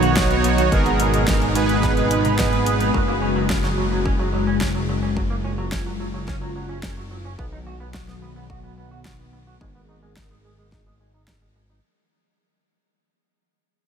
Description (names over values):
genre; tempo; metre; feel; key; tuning
synthwave; 108 BPM; 4/4; straight; unclear; A4 = 438 Hz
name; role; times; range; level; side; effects
warm analog pad; sustained chords; 0.0-11.8 s; B2 to A#4; -25 LUFS; left 2 dB; chorus, sidechain pumping
semi-hollow electric guitar; riff; 0.0-11.8 s; F#3 to F#4; -30 LUFS; right 3 dB; lush chorus, low-pass filter, ping-pong delay
analog synth brass; stabs; 0.0-2.9 s; B3 to C#5; -23 LUFS; right 4 dB; chorus, ping-pong delay
fat analog bass; bass; 0.0-11.8 s; F#1 to B1; -25 LUFS; equal; none
pop drum kit; drums; 0.0-11.4 s; hi-hat, snare drum, toms; -28 LUFS; left 1 dB; none
electronic kick drum; drums; 0.2-11.4 s; none; -26 LUFS; equal; none
room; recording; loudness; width
moderate huge ambient reverb, RT60 8.3 s; dreamy mix soaked in reverb; -18 LUFS; side -7 dB against mid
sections
0.0-11.8 A section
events
fade-out 0.0-11.8; filter sweep on analog synth pad 0.0-11.8; filter sweep on clean electric guitar 0.0-11.8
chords
0.0 B; 0.7 G#madd9; 2.9 F#sus2; 7.4 B; 9.6 G#madd9